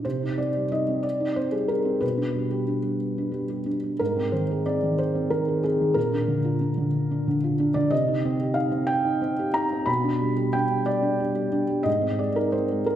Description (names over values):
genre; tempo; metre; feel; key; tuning
neoclassical minimalist piano; 61 BPM (dotted quarters); 6/8; rubato; C minor; A4 = 440 Hz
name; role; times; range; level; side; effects
felt-muted upright piano; solo; 0.0-13.0 s; Ab2 to B5; -22 LUFS; equal; none
room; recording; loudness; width
wet recital hall reverb, RT60 1.5 s; heard from further back in the room; -22 LUFS; side -11 dB against mid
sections
0.0-13.0 A section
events
none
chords
0.0 Cm; 2.0 G/B; 4.0 Ab; 6.0 Bb; 7.9 Cm; 9.9 G/B; 11.9 Ab